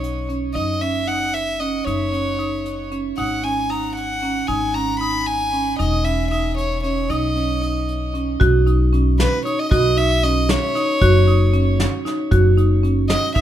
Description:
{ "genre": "progressive instrumental, band music in an uneven meter", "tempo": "229 BPM (eighths)", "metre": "5/8", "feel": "straight", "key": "B major", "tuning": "A4 = 440 Hz", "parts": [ { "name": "rich violin", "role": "melody", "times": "0.0-13.4 s", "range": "B4 to B5", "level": "-23 LUFS", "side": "left 1 dB", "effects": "tape echo" }, { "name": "marimba with medium hard mallets", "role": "arpeggios", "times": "0.0-13.4 s", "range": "C#4 to F#4", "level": "-22 LUFS", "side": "right 4 dB", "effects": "none" }, { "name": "upright bass", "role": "bass", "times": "0.0-13.1 s", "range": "E1 to B1", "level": "-20 LUFS", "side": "left 1 dB", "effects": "none" }, { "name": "soft brush drum kit", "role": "drums", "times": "0.0-13.4 s", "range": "hi-hat, kick drum, snare drum", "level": "-21 LUFS", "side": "right 1 dB", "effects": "none" } ], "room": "light reverb", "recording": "none", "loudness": "-17 LUFS", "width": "side -11 dB against mid", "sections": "0.0-8.4 A section; 8.4-13.4 B section", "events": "violin solo 8.4-13.4", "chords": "0.0 Bsus2; 0.6 F#5; 3.2 G#5; 5.8 C#madd9/E; 7.1 Badd9; 11.0 F#5", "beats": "0.03 0.29 | 0.56 0.82 1.08 1.34 1.61 | 1.87 2.13 2.39 2.65 2.92 | 3.18 3.44 3.70 3.96 4.23 | 4.49 4.75 5.01 5.28 5.54 | 5.80 6.06 6.32 6.58 6.85 | 7.11 7.37 7.63 7.89 8.15 | 8.41 8.68 8.94 9.20 9.46 | 9.72 9.98 10.24 10.50 10.76 | 11.02 11.28 11.54 11.80 12.06 | 12.32 12.58 12.84 13.10 13.36" }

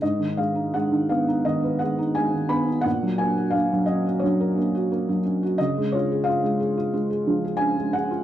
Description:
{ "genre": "classical, lyrical solo piano", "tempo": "83-90 BPM", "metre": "4/4", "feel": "rubato", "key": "unclear", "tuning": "A4 = 441 Hz", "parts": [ { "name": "felt-muted upright piano", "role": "solo", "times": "0.0-8.2 s", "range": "Ab2 to Cb6", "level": "-21 LUFS", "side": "equal", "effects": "none" } ], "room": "wet small room reverb, RT60 0.5 s", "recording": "none", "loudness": "-21 LUFS", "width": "side -12 dB against mid", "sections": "0.0-8.2 A section", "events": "none", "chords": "0.0 Abm; 2.9 Gb/Bb; 5.6 Db", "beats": "| 0.02 0.73 1.45 2.15 | 2.86 3.55 4.23 4.92 | 5.59 6.26 6.93 7.60" }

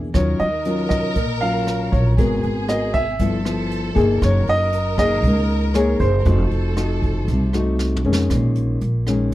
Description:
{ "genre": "bossa nova", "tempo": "118 BPM", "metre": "4/4", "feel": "straight", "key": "Bb minor", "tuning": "A4 = 439 Hz", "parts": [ { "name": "nylon-string guitar", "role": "accompaniment", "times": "0.0-9.3 s", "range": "G2 to Bb4", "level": "-22 LUFS", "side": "left 2 dB", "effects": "none" }, { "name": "upright bass", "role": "bass", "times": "0.0-9.3 s", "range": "F1 to F2", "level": "-21 LUFS", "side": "equal", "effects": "none" }, { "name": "dark grand piano", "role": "melody", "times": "0.1-7.8 s", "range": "C5 to F5", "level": "-23 LUFS", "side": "right 1 dB", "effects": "none" }, { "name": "rich studio violin section", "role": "second line", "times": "0.1-8.0 s", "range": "Ab4 to Bb4", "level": "-30 LUFS", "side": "right 3 dB", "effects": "none" }, { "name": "jazz brush drum kit", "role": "drums", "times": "0.1-9.2 s", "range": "hi-hat, kick drum, rim click, snare drum, toms", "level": "-25 LUFS", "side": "equal", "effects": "none" } ], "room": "little or no reverb", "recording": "dark, warm production", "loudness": "-17 LUFS", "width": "side -15 dB against mid", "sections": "0.0-8.3 A section; 8.3-9.3 B section", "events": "drum fill 7.8-8.3", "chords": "0.1 Ebm9; 2.2 Abm9; 3.2 G13; 4.2 Gb69; 6.3 F7b9; 8.3 Bbm7", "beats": "| 0.14 0.65 1.16 1.67 | 2.18 2.69 3.20 3.71 | 4.22 4.73 5.24 5.75 | 6.26 6.77 7.28 7.79 | 8.30 8.81 9.32" }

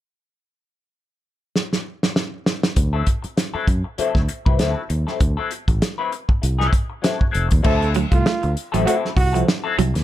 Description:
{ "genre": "funk", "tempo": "98 BPM", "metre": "4/4", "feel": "swing 56% on 16ths", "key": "D mixolydian", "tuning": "A4 = 437 Hz", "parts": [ { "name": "warm soul drum kit", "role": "drums", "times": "1.6-10.0 s", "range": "crash cymbal, hi-hat, kick drum, snare drum", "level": "-20 LUFS", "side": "equal", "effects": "none" }, { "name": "semi-hollow electric guitar", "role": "accompaniment", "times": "2.8-10.0 s", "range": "F#3 to B4", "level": "-24 LUFS", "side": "left 6 dB", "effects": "wah, plate reverb" }, { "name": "fingered electric bass", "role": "bass", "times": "2.8-10.0 s", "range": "F1 to F#2", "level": "-21 LUFS", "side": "equal", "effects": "none" }, { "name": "clear trombone", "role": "second line", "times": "7.6-9.4 s", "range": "F4 to A4", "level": "-25 LUFS", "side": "right 4 dB", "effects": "plate reverb" }, { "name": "electric guitar at the edge of break-up", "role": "riff", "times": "7.8-9.9 s", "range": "F3 to A3", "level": "-24 LUFS", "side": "right 11 dB", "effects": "tremolo" } ], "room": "light reverb", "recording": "none", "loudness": "-18 LUFS", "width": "side -13 dB against mid", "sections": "0.3-2.8 A section; 2.8-7.7 B section; 7.7-10.0 C section", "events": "drum fill 1.6-2.8", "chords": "0.3 N.C.; 2.8 D9", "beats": "| 0.33 0.94 1.55 2.16 | 2.77 3.38 3.99 4.60 | 5.21 5.82 6.43 7.04 | 7.65 8.26 8.87 9.48" }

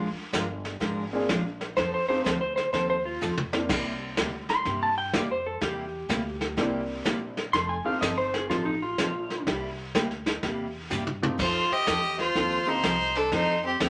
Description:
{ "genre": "country, western swing", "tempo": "125 BPM", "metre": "4/4", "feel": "swing 66% on 8ths", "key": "F major", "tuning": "A4 = 439 Hz", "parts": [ { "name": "picked steel-string acoustic guitar", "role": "accompaniment", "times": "0.0-13.9 s", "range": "C3 to Bb4", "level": "-35 LUFS", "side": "equal", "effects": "none" }, { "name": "upright bass", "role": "bass", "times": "0.0-13.9 s", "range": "F1 to G2", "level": "-41 LUFS", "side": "equal", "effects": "none" }, { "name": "vintage brush drum kit", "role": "drums", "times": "0.3-13.9 s", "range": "brushed snare drum, crash cymbal, hi-hat, kick drum, snare drum, toms", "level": "-33 LUFS", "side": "equal", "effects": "none" }, { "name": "clear upright piano", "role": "accompaniment", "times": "1.1-12.8 s", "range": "A3 to Ab4", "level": "-34 LUFS", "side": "equal", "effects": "none" }, { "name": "clean lap steel guitar", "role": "second line", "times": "1.8-9.4 s", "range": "Eb4 to C6", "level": "-30 LUFS", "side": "equal", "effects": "none" }, { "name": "clear fiddle", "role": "melody", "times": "11.4-13.9 s", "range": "C4 to G4", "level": "-30 LUFS", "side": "equal", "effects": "none" }, { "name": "clear fiddle", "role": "second line", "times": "11.4-13.9 s", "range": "G4 to Eb5", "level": "-29 LUFS", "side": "equal", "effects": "none" } ], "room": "wet club reverb, RT60 0.5 s", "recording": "none", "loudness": "-28 LUFS", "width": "mono", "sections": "0.0-11.4 A section; 11.4-13.9 B section", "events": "electric slide guitar solo 0.0-11.4; drum fill 3.2-3.7, 10.9-11.4", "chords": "0.0 Bb7; 1.8 F9; 3.7 C9; 7.5 F9; 9.5 C9; 11.4 F9", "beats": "0.33 0.81 1.29 | 1.77 2.25 2.73 3.21 | 3.69 4.17 4.65 5.13 | 5.62 6.10 6.58 7.06 | 7.54 8.02 8.50 8.98 | 9.46 9.95 10.43 10.91 | 11.39 11.87 12.36 12.84 | 13.32 13.80" }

